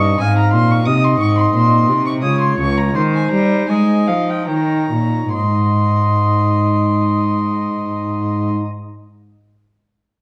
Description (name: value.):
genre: classical, baroque-style sonata movement with continuo.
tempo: 69-92 BPM.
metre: 3/4.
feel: rubato.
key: Ab major.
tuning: A4 = 440 Hz.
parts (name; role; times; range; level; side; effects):
dark violin; melody; 0.0-8.5 s; F5 to Eb6; -23 LUFS; equal; none.
warm oboe; second line; 0.0-8.5 s; C5 to G5; -26 LUFS; equal; none.
pipe organ, flutes; accompaniment; 0.0-8.7 s; Db2 to Eb5; -22 LUFS; equal; none.
rich cello; bass; 0.0-8.5 s; Db2 to Ab3; -20 LUFS; equal; none.
room: moderate large studio reverb, RT60 1.3 s.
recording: dark, warm production.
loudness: -16 LUFS.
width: mono.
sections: 0.0-5.3 A section; 5.3-10.2 B section.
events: slowing down 0.0-5.3.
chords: 0.2 Ab; 2.2 Db; 2.9 Ab/Eb; 4.5 Eb7; 5.3 Ab.